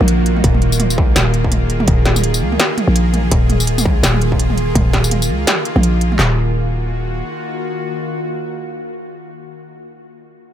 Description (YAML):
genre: half-time drum and bass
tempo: 167 BPM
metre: 4/4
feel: swing 59% on 16ths, half-time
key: Eb minor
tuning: A4 = 440 Hz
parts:
  - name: bowed-like drone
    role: sustained chords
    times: 0.0-9.5 s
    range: Eb3 to Ab4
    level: -22 LUFS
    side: right 1 dB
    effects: built-in reverb, sidechain pumping
  - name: growling 808-style bass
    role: bass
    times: 0.0-7.2 s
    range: Eb1 to Db2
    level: -16 LUFS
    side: equal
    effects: none
  - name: industrial drum kit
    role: drums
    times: 0.0-6.2 s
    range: hi-hat, snare drum, tambourine, toms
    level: -19 LUFS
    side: right 1 dB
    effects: none
  - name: industrial drum kit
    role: drums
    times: 0.4-6.3 s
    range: handclaps, kick drum, snare drum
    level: -16 LUFS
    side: equal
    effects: distortion
room: little or no reverb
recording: none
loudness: -13 LUFS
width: side -10 dB against mid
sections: 0.0-6.2 A section; 6.2-9.1 B section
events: drop 0.0-6.2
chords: 0.0 Eb5; 6.2 Ebm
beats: 0.08 | 0.44 0.80 1.16 1.52 | 1.88 2.24 2.60 2.96 | 3.31 3.67 4.03 4.39 | 4.75 5.11 5.47 5.83 | 6.19 6.55 6.91 7.27 | 7.63 7.99 8.35 8.70